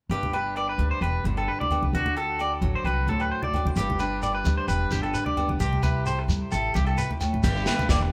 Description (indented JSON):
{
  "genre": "highlife guitar band",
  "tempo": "131 BPM",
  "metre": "4/4",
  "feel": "straight",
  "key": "G major",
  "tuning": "A4 = 441 Hz",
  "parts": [
    { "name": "picked old ladder-braced acoustic guitar", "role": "accompaniment", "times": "0.1-8.1 s", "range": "G2 to B4", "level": "-35 LUFS", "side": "equal", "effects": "none" },
    { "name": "electric guitar at the edge of break-up", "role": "arpeggios", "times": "0.1-8.1 s", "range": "F#4 to D5", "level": "-30 LUFS", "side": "equal", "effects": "tape echo" },
    { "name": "upright bass", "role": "bass", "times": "0.1-8.1 s", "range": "E1 to G2", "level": "-30 LUFS", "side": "equal", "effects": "none" },
    { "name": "congas", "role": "percussion", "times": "0.2-7.9 s", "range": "none", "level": "-32 LUFS", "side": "equal", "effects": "none" },
    { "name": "agogo bells", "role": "percussion", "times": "0.3-8.0 s", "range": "none", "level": "-36 LUFS", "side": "equal", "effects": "none" },
    { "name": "shekere", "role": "percussion", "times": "3.8-8.0 s", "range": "none", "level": "-37 LUFS", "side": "equal", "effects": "none" },
    { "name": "crunchy breakbeat drum kit", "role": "drums", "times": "7.4-8.0 s", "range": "crash cymbal, kick drum, snare drum", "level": "-27 LUFS", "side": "equal", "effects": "none" }
  ],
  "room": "moderate studio ambience, RT60 0.5 s",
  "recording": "band playing live in one room",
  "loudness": "-25 LUFS",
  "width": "mono",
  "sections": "0.1-7.4 A section",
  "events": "none",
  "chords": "0.1 G; 1.9 D; 3.8 G; 5.6 C; 7.4 G",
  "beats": "| 0.10 0.56 1.02 1.48 | 1.94 2.40 2.85 3.31 | 3.77 4.23 4.69 5.15 | 5.61 6.07 6.52 6.98 | 7.44 7.90"
}